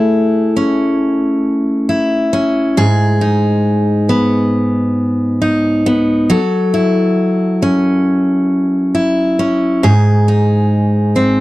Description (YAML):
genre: pop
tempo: 68 BPM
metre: 4/4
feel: straight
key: unclear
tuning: A4 = 440 Hz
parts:
  - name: picked steel-string acoustic guitar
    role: solo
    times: 0.0-11.4 s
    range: G#2 to A4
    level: -11 LUFS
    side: equal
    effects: none
room: little or no reverb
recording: dry, close 1970s-style studio recording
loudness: -11 LUFS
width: side -18 dB against mid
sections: 0.0-11.4 A section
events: none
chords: 0.0 Amaj7; 2.8 G#m; 6.3 F#m7; 9.8 G#